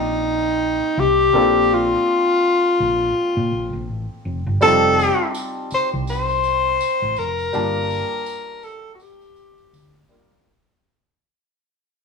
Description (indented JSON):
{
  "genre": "lush 1970s-style soul",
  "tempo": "82 BPM",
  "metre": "4/4",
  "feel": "swing 58% on 16ths",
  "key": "unclear",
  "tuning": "A4 = 440 Hz",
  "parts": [
    { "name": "breathy tenor saxophone", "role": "melody", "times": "0.0-10.1 s", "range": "Eb4 to C5", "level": "-18 LUFS", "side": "left 2 dB", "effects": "none" },
    { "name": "clear baby grand piano", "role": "accompaniment", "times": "0.0-10.5 s", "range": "G3 to A5", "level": "-25 LUFS", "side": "equal", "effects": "none" },
    { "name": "hollow-body short-scale fingered electric bass", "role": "bass", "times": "0.0-10.4 s", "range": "F1 to Bb2", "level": "-26 LUFS", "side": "equal", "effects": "none" },
    { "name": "tambourine", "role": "percussion", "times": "4.6-10.4 s", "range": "none", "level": "-40 LUFS", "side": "right 3 dB", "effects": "none" }
  ],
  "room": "wet stone room reverb, RT60 1.0 s",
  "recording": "band playing live in one room, cassette tape",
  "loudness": "-17 LUFS",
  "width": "side -4 dB against mid",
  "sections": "0.0-4.6 A section; 4.6-10.5 B section",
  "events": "fade-out 4.6-10.5",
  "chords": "0.0 Cm7; 1.3 Bbmaj7; 4.6 F7; 7.5 Gm9",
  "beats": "0.24 0.97 | 1.70 2.43 3.16 3.89 | 4.62 5.35 6.08 6.81 | 7.54 8.26 8.99 9.72"
}